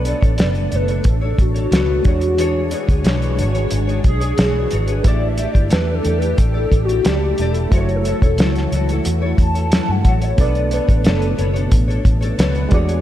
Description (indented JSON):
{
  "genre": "indie pop, bedroom pop",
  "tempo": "90 BPM",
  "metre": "4/4",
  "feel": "straight",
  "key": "B minor",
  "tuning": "A4 = 440 Hz",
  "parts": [
    { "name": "nylon-string guitar", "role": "accompaniment", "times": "0.0-13.0 s", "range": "E3 to D5", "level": "-26 LUFS", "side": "left 4 dB", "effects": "ensemble chorus, warbly pitch drift" },
    { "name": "reed electric piano", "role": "accompaniment", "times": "0.0-13.0 s", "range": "G#3 to D5", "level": "-28 LUFS", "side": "right 4 dB", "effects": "fast tremolo, cassette tape" },
    { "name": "soft string machine", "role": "sustained chords", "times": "0.0-13.0 s", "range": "B2 to C#5", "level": "-27 LUFS", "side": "equal", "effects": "ensemble chorus" },
    { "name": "vintage muted fingered electric bass", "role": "bass", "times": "0.0-13.0 s", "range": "E1 to G2", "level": "-19 LUFS", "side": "equal", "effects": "none" },
    { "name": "hollow clarinet-like synth lead", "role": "melody", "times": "0.1-11.4 s", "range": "F#4 to A5", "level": "-23 LUFS", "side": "left 1 dB", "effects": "analog chorus, ping-pong delay" },
    { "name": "cloth-damped thuddy drum kit", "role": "drums", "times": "0.1-13.0 s", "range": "hi-hat, kick drum, snare drum", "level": "-17 LUFS", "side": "equal", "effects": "none" }
  ],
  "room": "light reverb, studio reverb",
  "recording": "cassette tape, lossy compression artefacts",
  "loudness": "-14 LUFS",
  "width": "side -12 dB against mid",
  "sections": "0.0-13.0 A section",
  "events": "soft synth lead solo 0.0-13.0",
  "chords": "0.0 Bm9; 2.1 E13; 5.1 A7sus4; 7.7 F#m7; 10.4 Bm9",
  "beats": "0.39 1.06 1.73 | 2.39 3.06 3.73 4.39 | 5.06 5.72 6.39 7.06 | 7.72 8.39 9.06 9.72 | 10.39 11.06 11.72 12.39"
}